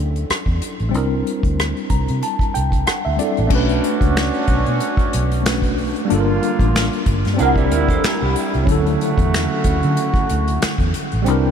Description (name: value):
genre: R&B, neo-soul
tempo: 93 BPM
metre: 4/4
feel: swing 55% on 16ths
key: unclear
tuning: A4 = 440 Hz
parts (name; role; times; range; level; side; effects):
- tine electric piano; accompaniment; 0.0-11.5 s; D3 to Bb5; -21 LUFS; left 1 dB; overdrive, fast stereo tremolo
- vintage muted fingered electric bass; bass; 0.0-11.5 s; G1 to D3; -20 LUFS; equal; none
- unplugged drum kit; drums; 0.2-11.4 s; crash cymbal, finger snaps, hi-hat, kick drum, rim click, snare drum; -21 LUFS; equal; none
- mellow horn section; stabs; 3.5-11.5 s; Bb2 to G4; -24 LUFS; right 4 dB; ping-pong delay
- electric guitar through a small old amp; second line; 7.4-8.7 s; E4 to F#5; -25 LUFS; right 6 dB; ensemble chorus
room: moderate huge ambient reverb, RT60 8.1 s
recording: dreamy mix soaked in reverb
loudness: -16 LUFS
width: side -8 dB against mid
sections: 0.0-3.5 A section; 3.5-11.5 B section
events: tine electric piano fill 1.6-3.5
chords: 0.0 Dmaj9; 0.9 C9; 3.5 Bm9; 6.1 Gm7; 7.4 C9; 8.7 Dmaj9